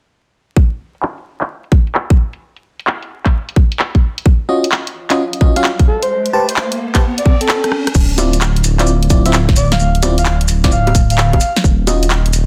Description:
UK garage, two-step garage; 130 BPM; 4/4; swing 67% on 16ths; D minor; A4 = 439 Hz
electronic kick drum; drums; 0.6-11.8 s; -13 LUFS; equal; small room ambience
garage drum kit; drums; 0.9-12.5 s; bongos, crash cymbal, handclaps, hi-hat, rim click, snare drum; -20 LUFS; equal; low-pass filter on hats, small room ambience, soft clipping on snare, low-pass filter on snare, low-pass filter on cymbals, low-pass filter on perc
riser; sound effects; 5.6-7.9 s; -26 LUFS; equal
FM electric piano; stabs; 4.5-12.1 s; C4 to A5; -21 LUFS; equal; chorus, digital delay
breathy flute-like synth lead; melody; 5.9-11.5 s; A4 to F5; -22 LUFS; equal; chorus, digital delay
dark detuned saw bass; bass; 7.9-12.5 s; D1 to Eb1; -16 LUFS; equal
maracas; percussion; 7.9-12.5 s; -27 LUFS; equal
light reverb, digital ambience; dense, heavily limited modern master, vinyl crackle; -14 LUFS; mono
0.6-7.9 A section; 7.9-12.5 B section
filter sweep on drum 0.6-7.9; riser 5.6-7.9; kick drops out 7.5-7.9; drum fill 7.5-7.9
0.6 N.C.; 4.0 Ebm9; 5.9 Am9; 7.9 Dm9; 11.4 Ebm9
| 0.56 1.03 1.49 1.95 | 2.41 2.87 3.33 3.79 | 4.26 4.72 5.18 5.64 | 6.10 6.56 7.03 7.49 | 7.95 8.41 8.87 9.33 | 9.79 10.26 10.72 11.18 | 11.64 12.10

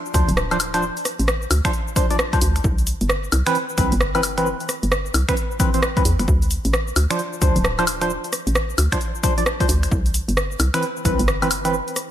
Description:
UK garage, two-step garage; 132 BPM; 4/4; swing 63% on 16ths; D dorian; A4 = 440 Hz
percussive organ stab; stabs; 0.1-11.8 s; E3 to D5; -23 LUFS; equal; chorus, ping-pong delay
hollow knocking FM bass; bass; 0.1-11.8 s; D1 to E2; -21 LUFS; equal; sidechain pumping
electronic kick drum; drums; 0.1-11.2 s; -21 LUFS; equal; overdrive
punchy analog drum machine; drums; 0.1-12.1 s; cabasa, finger snaps, hi-hat, rim click, woodblock; -24 LUFS; equal; overdrive
light reverb; bright 1980s-style digital production; -18 LUFS; side -11 dB against mid
0.0-12.1 A section
0.0 Dm7; 2.6 Cmaj7; 6.3 Dm7; 9.9 Cmaj7
0.37 | 0.83 1.28 1.74 2.19 | 2.64 3.10 3.55 4.01 | 4.46 4.92 5.37 5.83 | 6.28 6.74 7.19 7.64 | 8.10 8.55 9.01 9.46 | 9.92 10.37 10.83 11.28 | 11.73

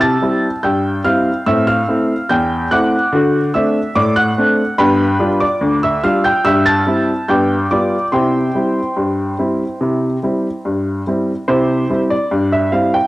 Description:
ragtime piano; 72 BPM; 2/4; straight; C major; A4 = 438 Hz
clear upright piano; solo; 0.0-13.1 s; D2 to A6; -13 LUFS; equal
moderate spring reverb, RT60 2.0 s, studio ambience; home recording on cassette; -13 LUFS; side -18 dB against mid
0.0-11.5 A section; 11.5-13.1 A section
0.0 C; 1.5 Am; 3.1 D7; 4.8 G7; 6.4 C/G; 7.3 G7; 8.1 C
0.64 | 1.47 2.30 | 3.13 3.96 | 4.78 5.61 | 6.45 7.29 | 8.12 8.96 | 9.80 10.64 | 11.48 12.32

